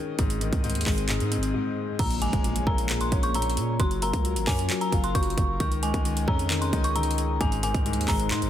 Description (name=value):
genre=hip hop, trap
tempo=133 BPM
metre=4/4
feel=half-time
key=unclear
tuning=A4 = 441 Hz
part: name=warm grand piano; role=accompaniment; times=0.0-8.5 s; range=Ab2 to F4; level=-30 LUFS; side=left 4 dB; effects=low-pass filter
part: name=airy breathy pad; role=sustained chords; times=0.0-8.5 s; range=Gb3 to Eb5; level=-34 LUFS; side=equal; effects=chorus
part: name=hard-hitting 808-style bass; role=bass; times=0.2-8.5 s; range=Gb1 to Bb2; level=-28 LUFS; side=right 1 dB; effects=none
part: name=trap drum kit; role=drums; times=0.2-8.5 s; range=crash cymbal, handclaps, hi-hat, kick drum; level=-27 LUFS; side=right 1 dB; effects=none
part: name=dark detuned synth bell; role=melody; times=2.0-8.5 s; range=Ab5 to Db6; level=-30 LUFS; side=left 1 dB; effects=chorus, low-pass filter, ping-pong delay
part: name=impact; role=sound effects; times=2.0-3.8 s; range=none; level=-36 LUFS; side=right 2 dB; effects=none
room=digital ambience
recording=dense, heavily limited modern master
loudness=-23 LUFS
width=side -11 dB against mid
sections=0.0-2.0 A section; 2.0-8.5 B section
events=break 0.0-2.0; impact 2.0-3.8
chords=0.2 Ab; 2.0 Bbm7; 3.8 Gbmaj7; 5.6 Dbsus2; 7.4 Ab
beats=| 0.19 0.64 1.09 1.54 | 1.99 2.44 2.90 3.35 | 3.80 4.25 4.70 5.15 | 5.60 6.05 6.50 6.96 | 7.41 7.86 8.31